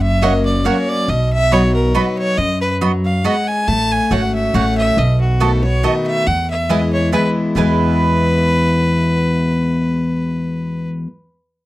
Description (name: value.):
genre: bluegrass.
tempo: 139 BPM.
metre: 3/4.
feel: swing 53% on 8ths.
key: E major.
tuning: A4 = 441 Hz.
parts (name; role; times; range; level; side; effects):
rich fiddle; melody; 0.0-10.9 s; F#4 to A5; -20 LUFS; equal; none.
picked steel-string acoustic guitar; accompaniment; 0.0-11.1 s; E2 to F#4; -17 LUFS; left 2 dB; none.
upright bass; bass; 0.0-10.9 s; F#1 to F#2; -20 LUFS; right 1 dB; none.
mandolin; stabs; 0.2-11.1 s; A3 to B5; -21 LUFS; right 7 dB; none.
room: light reverb.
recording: dry, close 1970s-style studio recording.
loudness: -14 LUFS.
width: side -16 dB against mid.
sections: 0.0-7.6 A section; 7.6-10.2 B section.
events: none.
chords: 0.0 F#; 1.1 B; 3.7 F#m; 5.0 B7; 6.3 E.